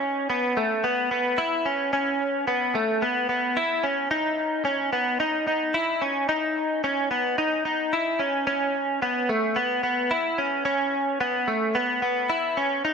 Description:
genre	dream pop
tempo	110 BPM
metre	4/4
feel	straight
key	unclear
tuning	A4 = 440 Hz
part	direct-recorded clean electric guitar	solo	0.0-12.9 s	A3 to E4	-22 LUFS	equal	analog chorus, dub echo
room	wet echo chamber reverb, RT60 1.5 s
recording	echo-heavy mix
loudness	-22 LUFS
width	side -6 dB against mid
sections	0.0-8.5 A section; 8.5-12.9 B section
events	none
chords	none

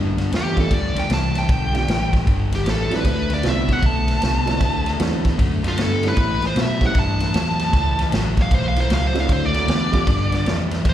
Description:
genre	electric blues shuffle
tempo	154 BPM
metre	4/4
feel	swing 64% on 8ths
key	D mixolydian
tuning	A4 = 440 Hz
part	overdriven semi-hollow guitar	riff	0.0-10.9 s	G2 to B3	-25 LUFS	left 4 dB	slapback echo
part	vintage muted fingered electric bass	bass	0.0-10.9 s	G1 to B2	-22 LUFS	equal	none
part	vintage drum kit	drums	0.2-10.9 s	kick drum, ride cymbal, snare drum	-22 LUFS	equal	none
part	dark smooth lead guitar	melody	0.4-10.9 s	F4 to A5	-24 LUFS	equal	overdrive, slapback echo
part	honky-tonk upright piano	accompaniment	0.6-10.1 s	F#3 to F4	-28 LUFS	right 6 dB	slapback echo
room	studio reverb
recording	live gig heard through the venue's PA, recital hall reverb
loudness	-17 LUFS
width	side -11 dB against mid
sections	0.0-10.9 A section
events	lead electric guitar solo 0.0-10.9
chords	0.0 Gadd9; 3.0 D9; 6.2 A9; 9.3 D9; 10.1 G5

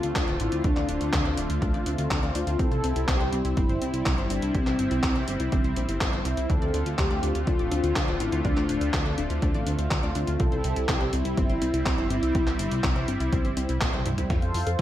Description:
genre	italo disco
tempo	123 BPM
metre	4/4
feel	straight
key	unclear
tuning	A4 = 438 Hz
part	mellow synth brass	melody	0.0-13.8 s	C4 to A4	-30 LUFS	left 1 dB	chorus, ping-pong delay
part	warm analog pad	sustained chords	0.0-14.8 s	D3 to C5	-31 LUFS	equal	chorus
part	wide unison pluck	arpeggios	0.0-14.8 s	C4 to F5	-35 LUFS	left 3 dB	tape echo
part	chorused synth bass	bass	0.0-14.8 s	D1 to F2	-29 LUFS	equal	none
part	detuned 8-bit digital drum machine	drums	0.0-14.8 s	handclaps, hi-hat, snare drum, toms	-32 LUFS	equal	gated reverb
part	electronic kick drum	drums	0.2-14.8 s	none	-27 LUFS	equal	none
room	light reverb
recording	vinyl crackle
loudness	-23 LUFS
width	side -12 dB against mid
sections	0.0-14.3 A section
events	drum fill 13.9-14.3, 14.3-14.8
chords	0.0 Dm7; 2.6 C; 6.5 Dm7; 10.4 C; 14.3 F

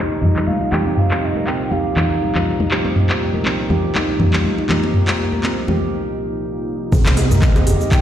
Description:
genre	afro house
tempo	121 BPM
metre	4/4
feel	swing 55% on 16ths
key	unclear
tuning	A4 = 440 Hz
part	mellow hollow bansuri	melody	0.0-2.7, 7.4-8.0 s	Eb5 to G5	-27 LUFS	right 2 dB	tape echo
part	warm analog pad	sustained chords	0.0-8.0 s	C2 to Eb5	-23 LUFS	right 1 dB	wide subtle chorus, sidechain pumping
part	handpan	arpeggios	0.0-8.0 s	G3 to Bb4	-22 LUFS	equal	sidechain pumping, tape echo
part	afro-pop drum kit	drums	0.2-8.0 s	handclaps, hi-hat, shaker, toms	-20 LUFS	equal	overdrive
part	congas	percussion	0.2-7.9 s	none	-22 LUFS	left 1 dB	none
part	dark detuned saw bass	bass	6.9-7.8 s	G1 to Eb2	-17 LUFS	equal	sidechain pumping
part	electronic kick drum	drums	6.9-8.0 s	none	-14 LUFS	equal	none
part	djembe	percussion	6.9-7.8 s	none	-25 LUFS	right 1 dB	none
part	downlifter	sound effects	6.9-8.0 s	none	-26 LUFS	right 2 dB	none
room	light reverb, small room ambience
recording	played on a big sound system in a bare room, stone room reverb, low-pass filter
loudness	-15 LUFS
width	side -10 dB against mid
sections	0.0-6.9 A section; 6.9-8.0 B section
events	filter sweep 0.0-6.9; break 5.9-6.9; drop 6.9-8.0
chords	0.0 Bbsus4/C; 6.9 Cm

